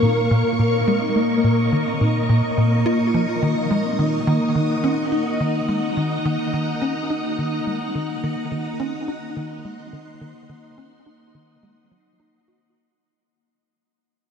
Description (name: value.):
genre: ambient, sequencer-driven space music.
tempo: 106 BPM.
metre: 4/4.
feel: straight.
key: unclear.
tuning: A4 = 439 Hz.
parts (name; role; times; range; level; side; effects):
string machine, full ensemble; sustained chords; 0.0-12.8 s; Bb3 to Db6; -23 LUFS; left 1 dB; ensemble chorus, shimmer reverb.
vibraphone with soft mallets; arpeggios; 0.0-12.8 s; F3 to F4; -26 LUFS; moving between left 4 dB and right 3 dB; auto-pan, tape echo.
tight sequencer bass; riff; 0.0-12.6 s; Bb2 to Gb4; -22 LUFS; equal; wide subtle chorus, tape echo.
room: moderate huge ambient reverb, RT60 8.2 s.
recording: none.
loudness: -18 LUFS.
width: side -7 dB against mid.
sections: 0.0-12.8 A section.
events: fade-out 3.7-12.8.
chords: 0.0 Bbm; 3.7 Ebm.